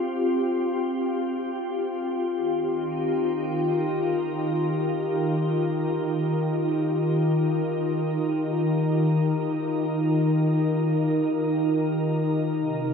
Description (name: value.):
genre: ambient.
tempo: free time.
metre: none.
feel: none.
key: Eb major.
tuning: A4 = 440 Hz.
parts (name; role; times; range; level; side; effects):
glassy FM pad; solo; 0.0-12.9 s; C3 to Bb4; -22 LUFS; left 1 dB; ensemble chorus, built-in reverb, ping-pong delay.
room: wet huge ambient reverb, RT60 9.0 s.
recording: dreamy mix soaked in reverb.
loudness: -22 LUFS.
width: side -6 dB against mid.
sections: 0.0-12.6 A section.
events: none.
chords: 0.0 Fsus2; 2.4 Ebadd9.